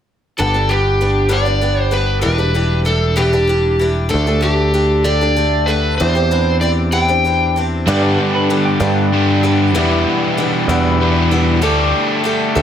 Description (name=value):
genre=folk rock and heartland rock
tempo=64 BPM (dotted quarters)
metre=6/8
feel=straight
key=G major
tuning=A4 = 442 Hz
part: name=overdriven slide guitar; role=melody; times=0.4-7.6 s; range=G4 to G5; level=-17 LUFS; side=equal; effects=slapback echo
part: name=picked twelve-string acoustic guitar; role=accompaniment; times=0.4-12.6 s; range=E2 to A4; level=-19 LUFS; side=left 3 dB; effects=none
part: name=picked electric bass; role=bass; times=0.4-12.6 s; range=E1 to G2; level=-17 LUFS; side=equal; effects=none
part: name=twelve-string electric guitar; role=second line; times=7.9-9.1 s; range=G4 to D5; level=-23 LUFS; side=right 4 dB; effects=analog chorus
part: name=crunchy overdriven guitar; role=riff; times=7.9-12.6 s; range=E2 to G4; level=-16 LUFS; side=right 1 dB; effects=none
room=light reverb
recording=none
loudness=-13 LUFS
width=side -9 dB against mid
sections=0.4-7.9 A section; 7.9-12.6 B section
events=none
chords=0.4 G; 2.3 Em7; 4.1 Dsus4; 6.0 Cadd9/E; 7.9 G; 9.8 Em7; 11.6 Dsus4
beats=| 0.40 1.33 | 2.27 3.20 | 4.14 5.07 | 6.01 6.95 | 7.88 8.82 | 9.75 10.69 | 11.62 12.56